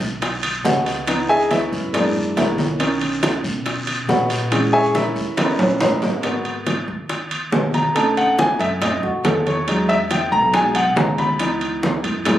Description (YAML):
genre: Afro-Cuban jazz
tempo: 140 BPM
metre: 4/4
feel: straight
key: B major, G# minor from 6.2 s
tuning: A4 = 441 Hz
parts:
  - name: upright bass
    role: bass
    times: 0.0-12.4 s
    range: G#1 to B2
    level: -28 LUFS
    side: equal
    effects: none
  - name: bongos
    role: percussion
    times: 0.0-12.4 s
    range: none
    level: -26 LUFS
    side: left 4 dB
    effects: none
  - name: congas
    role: percussion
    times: 0.0-12.4 s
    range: none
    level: -24 LUFS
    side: equal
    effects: none
  - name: guiro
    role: percussion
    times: 0.0-6.2 s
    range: none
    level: -33 LUFS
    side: left 1 dB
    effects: none
  - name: timbales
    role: percussion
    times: 0.2-12.4 s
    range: none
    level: -24 LUFS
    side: right 2 dB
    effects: none
  - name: warm grand piano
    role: accompaniment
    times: 0.7-12.4 s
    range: D#3 to B5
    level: -19 LUFS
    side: equal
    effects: none
room: moderate studio reverb, RT60 0.6 s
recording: recorded on a phone in the room, club reverb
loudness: -17 LUFS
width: side -12 dB against mid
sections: 0.0-6.2 A section; 6.2-12.4 A section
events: grand piano solo 0.0-12.4; drum fill 5.4-6.2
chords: 0.0 Emaj7sus2 (rootless); 1.1 C#m9; 1.9 F#9; 2.8 Bmaj7; 4.5 A#m7b5; 5.4 D#7b13; 6.2 G#m7; 8.0 B7; 9.7 Emaj9; 11.4 C#m7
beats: 0.22 0.65 | 1.08 1.51 1.94 2.37 | 2.80 3.23 3.66 4.09 | 4.52 4.95 5.38 5.81 | 6.24 6.67 7.10 7.53 | 7.96 8.39 8.82 9.25 | 9.68 10.11 10.54 10.97 | 11.40 11.83 12.26